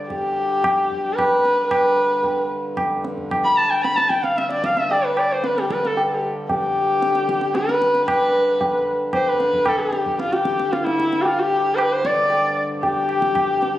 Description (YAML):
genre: indian classical, Hindustani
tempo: 113 BPM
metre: 3/4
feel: straight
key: G raga khamaj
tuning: A4 = 440 Hz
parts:
  - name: hand-pumped harmonium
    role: drone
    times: 0.0-13.8 s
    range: G2 to D3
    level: -30 LUFS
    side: equal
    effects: none
  - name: dark sarangi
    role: melody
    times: 0.1-13.8 s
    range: E4 to B5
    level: -18 LUFS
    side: left 1 dB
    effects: none
  - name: tabla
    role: percussion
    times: 0.1-13.8 s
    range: none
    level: -24 LUFS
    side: right 1 dB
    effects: none
room: moderate recital hall reverb, RT60 1.4 s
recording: recorded on a phone in the room, studio reverb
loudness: -17 LUFS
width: side -14 dB against mid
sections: 0.0-8.1 A section; 8.1-13.8 B section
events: none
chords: none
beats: | 0.10 0.63 1.17 | 1.70 2.23 2.77 | 3.30 3.83 4.37 | 4.90 5.43 5.96 | 6.49 7.02 7.55 | 8.08 8.61 9.14 | 9.67 10.20 10.72 | 11.25 11.78 12.30 | 12.83 13.36